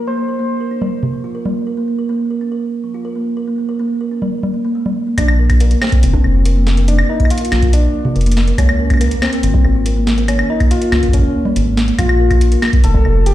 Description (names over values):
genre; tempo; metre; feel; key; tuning
IDM; 141 BPM; 4/4; straight; unclear; A4 = 445 Hz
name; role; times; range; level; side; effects
soft struck synth lead; melody; 0.0-1.6, 5.2-13.3 s; Bb3 to C5; -21 LUFS; left 2 dB; chorus, dub echo
kalimba; arpeggios; 0.0-13.3 s; F3 to Bb4; -20 LUFS; right 1 dB; vintage 12-bit sampler grit, low-pass filter, digital delay
booming analog drum machine; drums; 0.8-1.5, 4.2-13.3 s; congas, hi-hat, snare drum, woodblock; -20 LUFS; equal; digital delay
rubbery square bass; bass; 5.2-13.3 s; F1 to Db2; -14 LUFS; equal; none
electronic kick drum; drums; 5.2-13.0 s; none; -14 LUFS; equal; none
room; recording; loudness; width
light reverb, digital ambience; played on a big sound system in a bare room, large studio reverb; -13 LUFS; side -14 dB against mid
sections
0.0-5.2 A section; 5.2-13.3 B section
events
none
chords
0.0 N.C.; 5.2 Bb; 8.6 Db5; 12.0 Bb5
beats
| 0.07 0.50 0.92 1.35 | 1.77 2.20 2.62 3.05 | 3.48 3.90 4.33 4.75 | 5.18 5.60 6.03 6.45 | 6.88 7.30 7.73 8.16 | 8.58 9.01 9.43 9.86 | 10.28 10.71 11.13 11.56 | 11.99 12.41 12.84 13.26